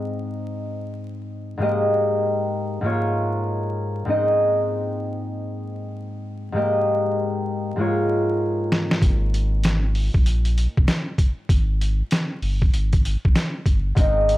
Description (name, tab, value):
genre	hip hop, boom-bap hip-hop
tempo	97 BPM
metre	4/4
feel	swing 62% on 16ths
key	Ab major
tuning	A4 = 437 Hz
part	concert harp	accompaniment	0.0-14.4 s	Ab2 to Eb5	-22 LUFS	equal	cassette tape, high-pass filter, low-pass filter
part	trip hop sampler-style drum kit	drums	8.7-14.4 s	hi-hat, kick drum, snare drum	-19 LUFS	equal	none
part	sub bass with octave	bass	9.0-14.4 s	G1 to C2	-21 LUFS	equal	transformer saturation
room	little or no reverb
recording	dry, gritty hardware recording, vinyl crackle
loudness	-19 LUFS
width	side -16 dB against mid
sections	0.0-14.4 A section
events	drum fill 8.4-9.0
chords	0.0 Ab; 1.6 Eb/Ab; 2.8 Bbm/Ab; 4.1 Ab; 6.5 Eb/Ab; 7.8 Bbm/Ab; 9.0 N.C.; 12.7 Gm